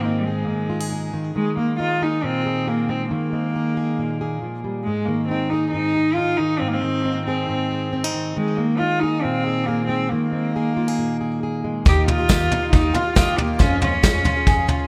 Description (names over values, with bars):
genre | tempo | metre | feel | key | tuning
indie folk with a building arrangement | 137 BPM | 4/4 | straight | unclear | A4 = 441 Hz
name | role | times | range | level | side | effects
rich cello | melody | 0.0-14.9 s | G3 to G4 | -24 LUFS | equal | analog delay
fingerpicked plugged-in steel-string acoustic guitar | accompaniment | 0.0-13.6 s | Ab2 to Ab4 | -28 LUFS | equal | analog delay
picked twelve-string acoustic guitar | accompaniment | 11.9-14.9 s | F2 to Ab4 | -32 LUFS | equal | analog delay
bowl-back mandolin | arpeggios | 11.9-14.9 s | Eb4 to Ab4 | -31 LUFS | equal | none
upright bass | bass | 11.9-14.6 s | Eb2 to F2 | -25 LUFS | equal | none
vintage brush drum kit | drums | 11.9-14.8 s | kick drum, snare drum, toms | -21 LUFS | equal | none
tambourine | percussion | 12.3-14.1 s | none | -36 LUFS | equal | none
room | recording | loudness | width
light reverb | echo-heavy mix | -21 LUFS | mono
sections
0.0-11.9 A section; 11.9-14.9 B section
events
none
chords
0.0 Ab5; 1.4 Ebsus4; 4.9 Ab; 8.4 Ebsus4; 11.9 Ebadd9; 13.6 Db/F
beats
0.04 0.48 0.92 | 1.35 1.79 2.23 2.67 | 3.11 3.54 3.98 4.42 | 4.86 5.30 5.74 6.17 | 6.61 7.05 7.49 7.93 | 8.36 8.80 9.24 9.68 | 10.11 10.55 10.99 11.42 | 11.86 12.29 12.73 13.16 | 13.60 14.03 14.47